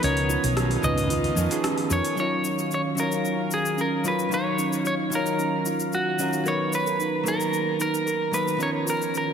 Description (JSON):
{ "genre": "sunset chillout", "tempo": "112 BPM", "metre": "4/4", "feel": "straight", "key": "Eb minor", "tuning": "A4 = 440 Hz", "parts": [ { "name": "clean electric guitar", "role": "melody", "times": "0.0-9.3 s", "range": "Gb4 to Eb5", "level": "-26 LUFS", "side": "equal", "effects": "spring reverb, ping-pong delay" }, { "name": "hollow-body jazz guitar", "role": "accompaniment", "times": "0.0-9.3 s", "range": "F3 to Db5", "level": "-29 LUFS", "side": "moving between left 5 dB and right 3 dB", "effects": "auto-pan" }, { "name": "airy breathy pad", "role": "sustained chords", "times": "0.0-9.3 s", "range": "Eb3 to A#5", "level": "-32 LUFS", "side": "right 1 dB", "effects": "chorus" }, { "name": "kalimba", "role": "arpeggios", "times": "0.0-9.3 s", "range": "Db4 to A#4", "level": "-30 LUFS", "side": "right 5 dB", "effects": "vintage 12-bit sampler grit, low-pass filter, ping-pong delay" }, { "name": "woody fretless electric bass", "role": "bass", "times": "0.0-2.0 s", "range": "Cb2 to F2", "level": "-25 LUFS", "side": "equal", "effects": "none" }, { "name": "deep house drum kit", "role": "drums", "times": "0.0-9.3 s", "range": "hi-hat, rim click, shaker, toms", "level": "-32 LUFS", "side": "left 2 dB", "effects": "overdrive" }, { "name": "drifting glass-harmonics texture", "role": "texture", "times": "0.0-2.2 s", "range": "Eb5 to Eb6", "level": "-44 LUFS", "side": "equal", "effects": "none" } ], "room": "moderate lush hall reverb, RT60 1.9 s, digital ambience", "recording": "heavily compressed radio sound", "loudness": "-22 LUFS", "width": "side -7 dB against mid", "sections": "0.0-2.2 A section; 2.2-9.3 B section", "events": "none", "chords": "0.0 Db13; 2.2 Ebm9; 6.5 Bmaj7; 8.6 Db13", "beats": "| 0.03 0.57 1.10 1.64 | 2.18 2.71 3.25 3.78 | 4.32 4.86 5.39 5.93 | 6.46 7.00 7.53 8.07 | 8.61 9.14" }